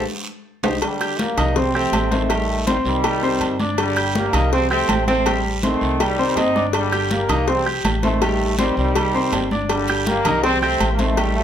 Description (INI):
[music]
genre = latin, salsa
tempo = 162 BPM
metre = 4/4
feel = straight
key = unclear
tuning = A4 = 438 Hz
[part]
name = upright bass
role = bass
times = 0.0-11.4 s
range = G1 to C2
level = -25 LUFS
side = equal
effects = none
[part]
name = clear grand piano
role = accompaniment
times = 0.6-11.4 s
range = G3 to G6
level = -22 LUFS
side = left 1 dB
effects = none
[part]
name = congas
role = percussion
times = 0.6-11.4 s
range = none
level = -27 LUFS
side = left 1 dB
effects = none
[part]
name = cowbell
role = percussion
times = 0.6-11.4 s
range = none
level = -28 LUFS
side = left 7 dB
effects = none
[part]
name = guiro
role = percussion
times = 0.6-11.4 s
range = none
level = -34 LUFS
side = right 4 dB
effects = none
[part]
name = timbales and agogo bells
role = percussion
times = 0.6-11.4 s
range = none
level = -27 LUFS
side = right 4 dB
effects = none
[part]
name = bright trombone section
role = melody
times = 0.8-11.4 s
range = D3 to Eb4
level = -21 LUFS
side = right 1 dB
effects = none
[sound]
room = moderate large studio reverb, RT60 0.9 s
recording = none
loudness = -17 LUFS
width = side -9 dB against mid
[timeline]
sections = 0.8-11.4 A section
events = drum fill 0.0-0.8; band accent 0.0-0.8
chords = 0.1 Cm; 1.6 Am7b5; 3.0 Cm; 4.5 C5; 6.0 Am7b5